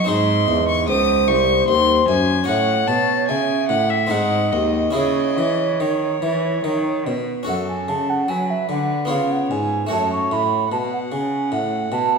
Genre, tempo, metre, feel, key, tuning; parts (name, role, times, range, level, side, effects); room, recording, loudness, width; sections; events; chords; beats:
classical, baroque-style sonata movement with continuo; 74 BPM; 3/4; straight; C# minor, F# minor from 7.5 s; A4 = 440 Hz
rich violin; melody; 0.0-12.2 s; A4 to D#6; -24 LUFS; left 6 dB
mellow baroque flute; second line; 0.0-12.2 s; B#4 to C#6; -21 LUFS; right 4 dB
harpsichord; accompaniment; 0.0-12.2 s; B#1 to C#5; -24 LUFS; left 2 dB
rich cello; bass; 0.0-12.2 s; B#1 to F#3; -24 LUFS; equal
wet recital hall reverb, RT60 1.4 s; minimal, uncompressed stereo recording; -17 LUFS; side -5 dB against mid
0.0-7.5 A section; 7.5-12.2 A section
0.1 G#; 2.5 F#m/A; 4.1 G#7; 5.0 C#m; 7.5 F#m; 9.1 C#7; 9.9 F#m
| 0.08 0.88 1.68 | 2.49 3.30 4.12 | 4.96 5.80 6.65 | 7.49 8.29 9.10 | 9.91 10.71 11.52